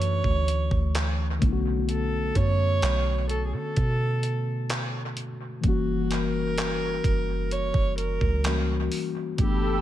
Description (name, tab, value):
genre	contemporary R&B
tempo	64 BPM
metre	4/4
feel	straight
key	unclear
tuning	A4 = 440 Hz
part	dark viola	melody	0.0-9.8 s	F#4 to C#5	-31 LUFS	right 3 dB	analog delay
part	mellow tine electric piano	accompaniment	0.0-9.8 s	D3 to G4	-30 LUFS	left 6 dB	lush chorus, analog delay
part	soft 808-style bass	bass	0.0-9.8 s	F#1 to D3	-27 LUFS	right 1 dB	none
part	gated 80s digital drum machine	drums	0.0-9.6 s	handclaps, hi-hat, kick drum	-28 LUFS	right 1 dB	gated reverb, analog delay
part	warm analog pad	sustained chords	9.4-9.8 s	A4 to E6	-30 LUFS	equal	chorus
room	little or no reverb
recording	echo-heavy mix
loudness	-23 LUFS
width	side -12 dB against mid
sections	0.0-9.8 A section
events	none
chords	0.0 Dmaj9; 1.4 Bm9; 5.6 F#7b9